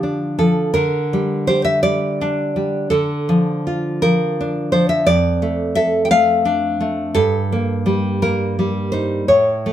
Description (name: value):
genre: romantic piece for solo classical guitar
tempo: 56 BPM (dotted quarters)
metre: 6/8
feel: rubato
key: D minor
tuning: A4 = 440 Hz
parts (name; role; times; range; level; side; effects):
- nylon-string guitar; solo; 0.0-9.7 s; F2 to G5; -15 LUFS; equal; none
room: moderate studio reverb, RT60 0.6 s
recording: band playing live in one room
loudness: -15 LUFS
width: side -11 dB against mid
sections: 0.0-9.7 A section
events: none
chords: 0.0 Dm; 0.7 Gm/D; 2.9 Dm; 5.1 Dm/F; 7.2 Eb/G